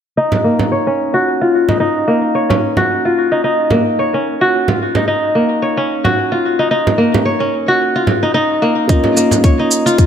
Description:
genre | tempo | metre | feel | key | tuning
organic downtempo | 110 BPM | 4/4 | swing 56% on 16ths | Eb minor | A4 = 440 Hz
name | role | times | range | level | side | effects
kora | arpeggios | 0.2-10.1 s | Bb3 to Db5 | -13 LUFS | left 1 dB | low-pass filter, digital delay
frame drum | percussion | 0.3-9.4 s | none | -18 LUFS | right 3 dB | none
felt-muted upright piano | accompaniment | 8.9-10.1 s | Bb3 to F4 | -15 LUFS | equal | sidechain pumping, digital delay
electronic kick drum | drums | 8.9-10.1 s | none | -10 LUFS | equal | none
shaker | drums | 8.9-10.1 s | none | -19 LUFS | right 2 dB | none
room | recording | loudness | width
moderate lush hall reverb, RT60 2.4 s | none | -12 LUFS | side -8 dB against mid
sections
0.2-10.1 A section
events
filter sweep on kora 0.2-10.1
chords
0.2 Ebm7; 8.9 Bbm

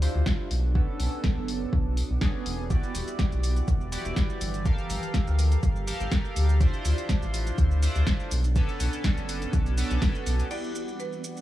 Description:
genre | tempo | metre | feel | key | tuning
deep house | 123 BPM | 4/4 | swing 53% on 16ths | E dorian | A4 = 442 Hz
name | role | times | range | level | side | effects
chorused polysynth | stabs | 0.0-11.4 s | B3 to F#5 | -34 LUFS | right 1 dB | sidechain pumping, analog delay
round analog bass | bass | 0.0-10.4 s | E1 to D2 | -25 LUFS | equal | sidechain pumping
deep house drum kit | drums | 0.0-11.4 s | crash cymbal, hi-hat, shaker, snare drum | -34 LUFS | equal | overdrive
granular cloud pad | texture | 0.0-11.4 s | E3 to D6 | -40 LUFS | right 2 dB | built-in reverb, sidechain pumping
electronic kick drum | drums | 0.3-10.1 s | none | -26 LUFS | equal | overdrive
buzzing marimba with medium hard mallets | melody | 10.5-11.4 s | B4 to D5 | -38 LUFS | right 5 dB | none
warm analog pad | sustained chords | 10.5-11.4 s | E3 to F#5 | -42 LUFS | right 1 dB | chorus, vintage 12-bit sampler grit, sidechain pumping
room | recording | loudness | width
little or no reverb | dry, gritty hardware recording, transformer saturation | -24 LUFS | side -14 dB against mid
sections
0.0-10.5 A section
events
filter sweep on analog polysynth 0.0-10.5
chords
0.0 Dm9; 0.5 Bm9; 2.7 Em9; 4.7 Gm9; 6.6 Dm9; 8.3 Bm9; 10.5 Em9

